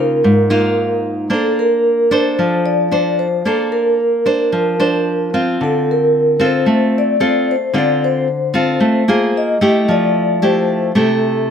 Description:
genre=bossa nova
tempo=112 BPM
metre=4/4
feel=straight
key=unclear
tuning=A4 = 440 Hz
part: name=vibraphone with medium mallets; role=melody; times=0.0-11.5 s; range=A4 to Eb5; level=-16 LUFS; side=left 1 dB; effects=none
part: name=nylon-string guitar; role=accompaniment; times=0.0-11.5 s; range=Ab2 to C5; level=-15 LUFS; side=equal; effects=none
room=moderate echo chamber reverb, RT60 1.3 s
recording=none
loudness=-13 LUFS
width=side -8 dB against mid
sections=0.0-11.5 A section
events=none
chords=0.0 Db69; 1.3 Bbmaj9; 5.6 Dm7; 9.3 Fm11; 9.9 Fmaj9

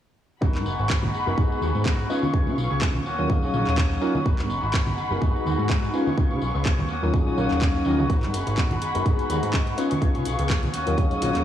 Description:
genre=filtered disco house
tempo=125 BPM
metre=4/4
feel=swing 55% on 16ths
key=G# dorian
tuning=A4 = 443 Hz
part: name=tine electric piano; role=accompaniment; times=0.4-11.4 s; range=F#3 to E#5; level=-26 LUFS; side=left 1 dB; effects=medium stereo tremolo, phaser, sidechain pumping, low-pass filter
part: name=dark symphonic string section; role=sustained chords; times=0.4-11.4 s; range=F#4 to D#6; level=-32 LUFS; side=left 2 dB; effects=sidechain pumping, low-pass filter
part: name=electric guitar with an envelope filter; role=riff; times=0.4-11.4 s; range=E#3 to G#4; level=-30 LUFS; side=left 1 dB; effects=spring reverb, sidechain pumping, low-pass filter
part: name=fat analog bass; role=bass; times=0.4-11.4 s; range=D#1 to C#3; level=-27 LUFS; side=equal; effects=sidechain pumping, low-pass filter
part: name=electronic kick drum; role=drums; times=0.4-11.1 s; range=none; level=-23 LUFS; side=equal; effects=studio reverb
part: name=tambourine and congas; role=percussion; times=0.4-11.4 s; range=none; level=-33 LUFS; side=equal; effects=sidechain pumping on perc, low-pass filter on perc
part: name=house drum kit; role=drums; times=0.5-11.4 s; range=handclaps, hi-hat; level=-32 LUFS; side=equal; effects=studio reverb, sidechain pumping on hats
room=little or no reverb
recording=dry, gritty hardware recording, transformer saturation, small room ambience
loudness=-21 LUFS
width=side -11 dB against mid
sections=0.4-11.4 A section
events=none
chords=0.4 G#m7; 2.1 C#7; 3.1 D#m7; 4.3 G#m7; 5.9 C#7; 6.9 D#m7; 8.1 G#m7; 9.8 C#7; 10.7 D#m7

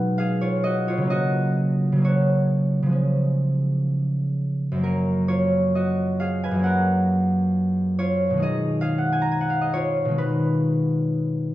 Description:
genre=classical, solo harp piece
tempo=62-70 BPM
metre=4/4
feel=rubato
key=F# major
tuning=A4 = 440 Hz
part: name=concert harp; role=solo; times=0.0-11.5 s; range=F#2 to A#5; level=-20 LUFS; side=equal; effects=none
room=moderate recital hall reverb, RT60 1.7 s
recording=dark, warm production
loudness=-20 LUFS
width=side -15 dB against mid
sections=0.0-11.5 A section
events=none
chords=0.0 G#m7/B; 1.1 F#/C#; 3.0 C#; 4.8 F#; 8.4 G#m/B

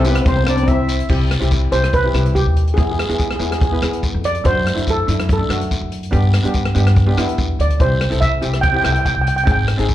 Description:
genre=calypso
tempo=143 BPM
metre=4/4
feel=straight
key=C major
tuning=A4 = 440 Hz
part: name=steel pan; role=melody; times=0.0-9.6 s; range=C4 to G5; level=-20 LUFS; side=right 1 dB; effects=slapback echo
part: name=mellow horn section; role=second line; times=0.0-1.1 s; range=B3 to E5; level=-23 LUFS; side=left 3 dB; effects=slapback echo
part: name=upright bass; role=bass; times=0.0-9.9 s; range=Ab1 to G2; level=-18 LUFS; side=equal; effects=none
part: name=open jazz drum kit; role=drums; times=0.0-9.9 s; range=crash cymbal, hi-hat, kick drum, rim click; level=-21 LUFS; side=equal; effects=none
part: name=guiro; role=percussion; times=0.0-9.9 s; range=none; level=-31 LUFS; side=left 2 dB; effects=slapback echo
part: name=steel pan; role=accompaniment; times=0.1-9.9 s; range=A3 to B4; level=-23 LUFS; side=equal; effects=slapback echo
room=light reverb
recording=live gig heard through the venue's PA, club reverb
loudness=-14 LUFS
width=side -13 dB against mid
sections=0.0-1.1 A section; 1.1-9.9 B section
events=steel pan solo 1.1-9.9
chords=0.0 C; 1.1 Cmaj7; 2.8 E; 4.5 D7/F#; 6.1 G; 7.8 C

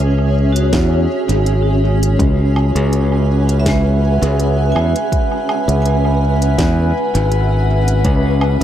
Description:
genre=ambient dub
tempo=82 BPM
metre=4/4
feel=swing 54% on 16ths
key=unclear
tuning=A4 = 439 Hz
part: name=granular cloud pad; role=sustained chords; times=0.0-8.6 s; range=C#4 to D#6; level=-20 LUFS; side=equal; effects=built-in reverb
part: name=modern bright fingered electric bass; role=bass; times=0.0-8.6 s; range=G#1 to E2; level=-14 LUFS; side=equal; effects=tube saturation
part: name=vibraphone with hard mallets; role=arpeggios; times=0.5-8.6 s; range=G#3 to G#5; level=-22 LUFS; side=right 3 dB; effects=analog delay
part: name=organic electronic drum kit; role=drums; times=0.6-8.6 s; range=hi-hat, snare drum, woodblock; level=-25 LUFS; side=right 1 dB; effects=overdrive, dub echo
part: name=electronic kick drum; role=drums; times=0.7-8.2 s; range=none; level=-18 LUFS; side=equal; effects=none
part: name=drifting glass-harmonics texture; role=texture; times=3.1-8.6 s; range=B4 to B5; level=-26 LUFS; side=left 6 dB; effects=chorus, built-in reverb
room=digital ambience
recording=echo-heavy mix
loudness=-12 LUFS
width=side -11 dB against mid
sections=0.0-8.6 A section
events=none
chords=0.0 C#madd9; 2.2 Eadd9

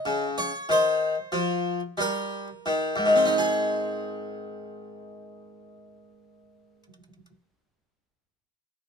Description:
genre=classical, baroque-style suite movement for harpsichord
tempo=44 BPM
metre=4/4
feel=rubato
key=Ab major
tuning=A4 = 444 Hz
part: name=harpsichord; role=solo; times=0.0-7.3 s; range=Ab2 to Eb5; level=-24 LUFS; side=left 1 dB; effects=none
room=light reverb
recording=minimal, uncompressed stereo recording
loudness=-23 LUFS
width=side -6 dB against mid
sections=0.0-3.4 A section; 3.4-8.8 B section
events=slowing down 0.0-3.4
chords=0.0 N.C.; 0.7 Eb; 3.4 Ab

